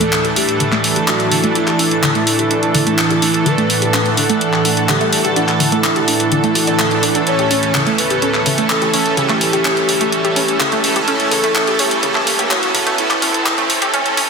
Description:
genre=progressive house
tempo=126 BPM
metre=4/4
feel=straight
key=D major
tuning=A4 = 440 Hz
part: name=soft octave-layered synth lead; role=melody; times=0.0-14.3 s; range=E4 to C#5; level=-21 LUFS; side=left 2 dB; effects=chorus, phaser, ping-pong delay
part: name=airy breathy pad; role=sustained chords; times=0.0-14.3 s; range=D2 to F#5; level=-22 LUFS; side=equal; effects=chorus, phaser, vintage 12-bit sampler grit
part: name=analog pluck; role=arpeggios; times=0.0-14.2 s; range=C#3 to D5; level=-21 LUFS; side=equal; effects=chorus, ping-pong delay
part: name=soft supersaw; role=stabs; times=0.0-14.3 s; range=E3 to A4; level=-18 LUFS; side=right 3 dB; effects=ping-pong delay
part: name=house drum kit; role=drums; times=0.0-14.3 s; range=handclaps, hi-hat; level=-18 LUFS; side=equal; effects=none
part: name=twinkling granular texture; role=texture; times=0.1-14.3 s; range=A4 to A5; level=-28 LUFS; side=right 1 dB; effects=none
part: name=riser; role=sound effects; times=9.6-14.3 s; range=none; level=-26 LUFS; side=right 1 dB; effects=none
room=moderate lush hall reverb, RT60 2.1 s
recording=dense, heavily limited modern master, high-pass filter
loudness=-12 LUFS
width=side -5 dB against mid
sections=0.0-14.3 A section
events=build-up 0.0-14.3; filter sweep on synth arpeggio sound 0.0-14.3; riser 9.6-14.3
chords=0.0 Dsus2; 7.3 A/D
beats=0.13 0.60 1.08 | 1.55 2.03 2.51 2.98 | 3.46 3.94 4.41 4.89 | 5.37 5.84 6.32 6.79 | 7.27 7.75 8.22 8.70 | 9.17 9.65 10.13 10.60 | 11.08 11.55 12.03 12.51 | 12.98 13.46 13.94

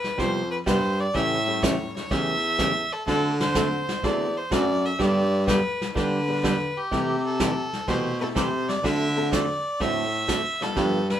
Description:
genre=country, western swing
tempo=125 BPM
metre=4/4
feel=swing 69% on 8ths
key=unclear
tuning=A4 = 436 Hz
part: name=clear fiddle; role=melody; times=0.0-11.2 s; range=G4 to E5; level=-27 LUFS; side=right 1 dB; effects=none
part: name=vintage brush drum kit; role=drums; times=0.0-11.2 s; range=brushed snare drum, hi-hat, kick drum, snare drum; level=-30 LUFS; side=left 1 dB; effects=none
part: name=archtop guitar, miked and amplified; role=accompaniment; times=0.2-11.0 s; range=C3 to A4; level=-27 LUFS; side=right 2 dB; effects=none
part: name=breathy baritone saxophone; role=bass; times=0.2-11.2 s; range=E2 to D3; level=-26 LUFS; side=equal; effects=none
part: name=clear upright piano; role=accompaniment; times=1.5-10.8 s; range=G3 to B4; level=-33 LUFS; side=left 3 dB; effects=none
room=moderate studio ambience, RT60 0.5 s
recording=band playing live in one room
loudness=-22 LUFS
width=side -10 dB against mid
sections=0.0-11.2 A section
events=none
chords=0.0 Cmaj7; 1.1 A7; 3.1 D7; 5.0 G; 6.9 C6; 8.8 D7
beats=0.18 0.66 | 1.14 1.62 2.10 2.58 | 3.06 3.55 4.03 4.51 | 4.99 5.47 5.95 6.43 | 6.92 7.40 7.88 8.36 | 8.84 9.32 9.80 10.29 | 10.77

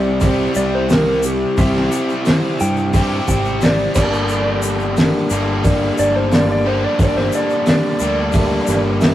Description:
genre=classic rock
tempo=89 BPM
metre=4/4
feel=straight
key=G dorian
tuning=A4 = 440 Hz
part: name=electric slide guitar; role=melody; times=0.0-9.0 s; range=G4 to G5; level=-21 LUFS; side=left 1 dB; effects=none
part: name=reed electric piano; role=accompaniment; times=0.0-9.1 s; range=C4 to F5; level=-23 LUFS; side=right 2 dB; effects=none
part: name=biting overdriven guitar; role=riff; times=0.0-9.1 s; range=G2 to G4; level=-20 LUFS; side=left 1 dB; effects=none
part: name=growling fingered electric bass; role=bass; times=0.0-9.1 s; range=G1 to G2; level=-22 LUFS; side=equal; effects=overdrive
part: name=cloth-damped thuddy drum kit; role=drums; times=0.2-9.1 s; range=crash cymbal, hi-hat, kick drum, snare drum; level=-18 LUFS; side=equal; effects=none
part: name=egg shaker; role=percussion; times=0.2-9.1 s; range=none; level=-32 LUFS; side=left 5 dB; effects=none
room=moderate stone room reverb, RT60 1.3 s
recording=rough rehearsal-room recording, warm saturation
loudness=-14 LUFS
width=side -13 dB against mid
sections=0.0-9.1 A section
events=electric slide guitar solo 0.0-9.1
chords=0.0 C; 4.0 Gm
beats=0.23 0.91 | 1.59 2.27 2.94 3.62 | 4.30 4.97 5.65 6.32 | 7.00 7.67 8.34 9.01

